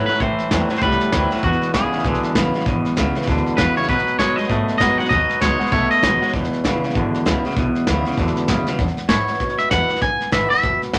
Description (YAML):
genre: rockabilly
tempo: 196 BPM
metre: 4/4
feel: swing 60% on 8ths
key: E major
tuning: A4 = 440 Hz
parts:
  - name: twangy electric guitar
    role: melody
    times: 0.0-6.3, 9.1-10.8 s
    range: F#4 to G#5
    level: -22 LUFS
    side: equal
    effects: none
  - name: picked old ladder-braced acoustic guitar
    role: accompaniment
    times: 0.0-11.0 s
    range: E2 to F#4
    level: -28 LUFS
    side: equal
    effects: none
  - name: twangy electric guitar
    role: riff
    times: 0.0-8.8 s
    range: E2 to A3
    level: -24 LUFS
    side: equal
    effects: none
  - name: upright bass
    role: bass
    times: 0.0-11.0 s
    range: E1 to B2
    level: -29 LUFS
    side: equal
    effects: none
  - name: soft brush drum kit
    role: drums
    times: 0.1-11.0 s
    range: hi-hat, kick drum, snare drum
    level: -26 LUFS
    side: equal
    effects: none
room: wet club reverb, RT60 0.5 s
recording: none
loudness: -19 LUFS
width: mono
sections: 0.0-8.8 A section; 8.8-11.0 B section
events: drum fill 8.6; clean electric guitar solo 8.8-11.0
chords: 0.2 Am7; 1.4 E; 3.9 B; 6.3 E